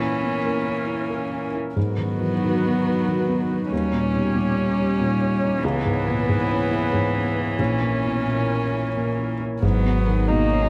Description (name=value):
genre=neoclassical piano and strings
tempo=88-95 BPM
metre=3/4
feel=rubato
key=G# minor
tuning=A4 = 440 Hz
part: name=rich cello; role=second line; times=0.0-10.7 s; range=E3 to A#3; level=-28 LUFS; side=equal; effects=none
part: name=dark baby grand piano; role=accompaniment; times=0.0-10.7 s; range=A#1 to E4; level=-27 LUFS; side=equal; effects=none
part: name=dark viola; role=accompaniment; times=0.0-10.7 s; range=B3 to D#4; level=-29 LUFS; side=equal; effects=none
part: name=hollow soft pad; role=sustained chords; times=0.0-10.7 s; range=C#4 to C#5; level=-32 LUFS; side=equal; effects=chorus
part: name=warm sub bass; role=bass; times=9.6-10.7 s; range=G#1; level=-25 LUFS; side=equal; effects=none
room=moderate large studio reverb, RT60 1.3 s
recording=none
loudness=-22 LUFS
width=mono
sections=0.0-9.6 A section; 9.6-10.7 A section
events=none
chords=0.0 A#dim; 1.8 G#m7; 3.7 D#7; 5.6 C#m7; 7.6 A#dim; 9.6 G#m7